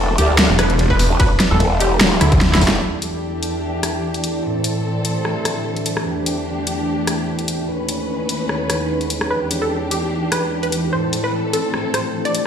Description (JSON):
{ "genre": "heavy wobble dubstep", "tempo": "148 BPM", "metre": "4/4", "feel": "swing 54% on 16ths, half-time", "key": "unclear", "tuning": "A4 = 440 Hz", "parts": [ { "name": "wide unison pluck", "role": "melody", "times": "0.0-2.7, 9.3-12.4 s", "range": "E4 to D5", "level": "-23 LUFS", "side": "right 1 dB", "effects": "tape echo" }, { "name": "growl bass", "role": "bass", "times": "0.0-2.8 s", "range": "E1 to D2", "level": "-17 LUFS", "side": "equal", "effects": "chorus, overdrive" }, { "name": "deep dark ambient pad", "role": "texture", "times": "0.0-12.5 s", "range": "A3 to A5", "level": "-24 LUFS", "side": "equal", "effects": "chorus, built-in reverb, sidechain pumping" }, { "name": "dubstep drum kit", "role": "drums", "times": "0.2-12.4 s", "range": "hi-hat, ride cymbal, rim click, snare drum", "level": "-20 LUFS", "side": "equal", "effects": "small room ambience" }, { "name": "snarling distorted saw bass", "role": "bass", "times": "0.5-2.6 s", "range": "E1 to D2", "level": "-16 LUFS", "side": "equal", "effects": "distortion, overdrive" }, { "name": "electronic kick drum", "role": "drums", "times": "0.9-2.7 s", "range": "none", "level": "-18 LUFS", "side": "equal", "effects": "distortion, small room ambience" }, { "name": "dark studio string section", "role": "sustained chords", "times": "2.8-12.5 s", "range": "D#2 to B4", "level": "-23 LUFS", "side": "equal", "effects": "sidechain pumping" } ], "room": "moderate digital room reverb, RT60 1.1 s", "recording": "played on a big sound system in a bare room, stone room reverb", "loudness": "-16 LUFS", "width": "side -8 dB against mid", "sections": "0.0-2.8 A section; 2.8-12.5 B section", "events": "drop 0.0-2.8; drum fill 2.4-2.8", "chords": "0.0 N.C.; 2.8 Em7; 4.4 Am; 6.1 Em7; 7.7 Badd9/D#; 9.3 Em7; 10.9 Am" }